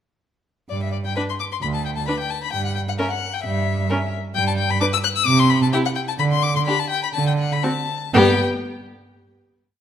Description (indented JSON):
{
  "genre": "quick classical-period movement for string quartet",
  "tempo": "116-133 BPM",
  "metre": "4/4",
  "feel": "straight",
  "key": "G major",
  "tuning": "A4 = 440 Hz",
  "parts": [
    { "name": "warm violin", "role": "melody", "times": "0.7-8.4 s", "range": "D5 to F#6", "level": "-23 LUFS", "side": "left 8 dB", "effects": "none" },
    { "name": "rich cello", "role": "bass", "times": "0.7-8.4 s", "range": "D2 to D3", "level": "-22 LUFS", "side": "right 3 dB", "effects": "none" },
    { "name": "rich violin", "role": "second line", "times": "1.2-8.4 s", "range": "F#4 to B4", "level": "-25 LUFS", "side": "left 4 dB", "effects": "none" },
    { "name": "warm viola", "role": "accompaniment", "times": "1.2-8.4 s", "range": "B3 to E4", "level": "-24 LUFS", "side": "right 1 dB", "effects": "none" }
  ],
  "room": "moderate recital hall reverb, RT60 1.3 s",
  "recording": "none",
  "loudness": "-18 LUFS",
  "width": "side -9 dB against mid",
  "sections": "0.7-8.1 A section; 8.1-9.8 final chord",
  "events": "slowing down 3.4-8.1",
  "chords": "0.7 G; 2.5 G5; 4.4 N.C.; 6.2 G5/D; 7.1 D; 8.1 G",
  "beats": "| 0.70 1.17 1.63 2.08 | 2.54 2.99 3.45 3.90 | 4.35 4.81 5.27 5.73 | 6.20 6.67 7.15 7.63 | 8.14"
}